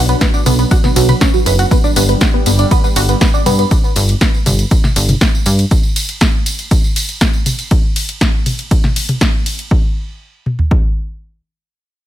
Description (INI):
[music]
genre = melodic techno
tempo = 120 BPM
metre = 4/4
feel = straight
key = unclear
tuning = A4 = 441 Hz
[part]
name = sweeping resonant pad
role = sustained chords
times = 0.0-3.7 s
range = F#3 to D4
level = -24 LUFS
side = left 1 dB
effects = chorus, vintage 12-bit sampler grit, sidechain pumping
[part]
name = plucky analog bass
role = bass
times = 0.0-5.7 s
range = F#1 to G2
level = -13 LUFS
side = equal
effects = sidechain pumping
[part]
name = tight sequenced synth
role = arpeggios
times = 0.1-3.6 s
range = F#3 to B5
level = -17 LUFS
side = right 2 dB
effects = chorus, phaser, sidechain pumping, tape echo
[part]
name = house drum kit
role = drums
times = 0.1-9.7 s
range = hi-hat, ride cymbal, snare drum, toms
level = -18 LUFS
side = equal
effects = studio reverb
[part]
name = tambourine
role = percussion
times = 0.1-7.7 s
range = none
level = -24 LUFS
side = right 2 dB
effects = none
[part]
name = house drum kit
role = drums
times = 0.2-10.8 s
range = kick drum, toms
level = -14 LUFS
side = equal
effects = studio reverb
[sound]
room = digital ambience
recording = none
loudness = -11 LUFS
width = side -12 dB against mid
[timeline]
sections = 0.0-9.7 A section; 9.7-12.1 B section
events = drop 0.0-9.7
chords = 0.0 Bm; 1.7 G; 9.7 N.C.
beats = 0.21 0.71 1.21 | 1.71 2.21 2.71 3.21 | 3.71 4.21 4.71 5.21 | 5.71 6.21 6.71 7.21 | 7.71 8.21 8.71 9.21 | 9.71 10.21 10.71